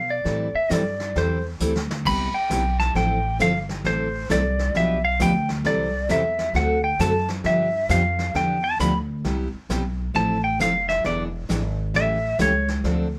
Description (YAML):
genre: country, western swing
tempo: 133 BPM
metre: 4/4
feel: swing 65% on 8ths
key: C major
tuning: A4 = 439 Hz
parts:
  - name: clean lap steel guitar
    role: melody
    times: 0.0-12.7 s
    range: C5 to B5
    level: -25 LUFS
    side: equal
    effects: none
  - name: upright bass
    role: bass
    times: 0.0-13.2 s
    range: E1 to B2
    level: -28 LUFS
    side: equal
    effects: none
  - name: picked steel-string acoustic guitar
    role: accompaniment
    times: 0.2-13.1 s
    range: B2 to B4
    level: -28 LUFS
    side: equal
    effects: none
  - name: vintage brush drum kit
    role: drums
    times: 0.3-13.2 s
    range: brushed snare drum, crash cymbal, hi-hat, kick drum, snare drum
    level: -35 LUFS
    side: equal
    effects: none
room: light reverb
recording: band playing live in one room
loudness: -23 LUFS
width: mono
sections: 0.0-13.2 A section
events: electric slide guitar solo 0.0-13.2; drum fill 1.6-2.1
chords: 0.3 Am7; 2.1 Cmaj7; 3.0 Fmaj7; 3.9 Am; 4.8 G7/B; 5.7 C6; 6.5 D7; 7.4 G7; 9.2 Cmaj7; 10.1 Fmaj7; 11.0 E7; 11.9 A7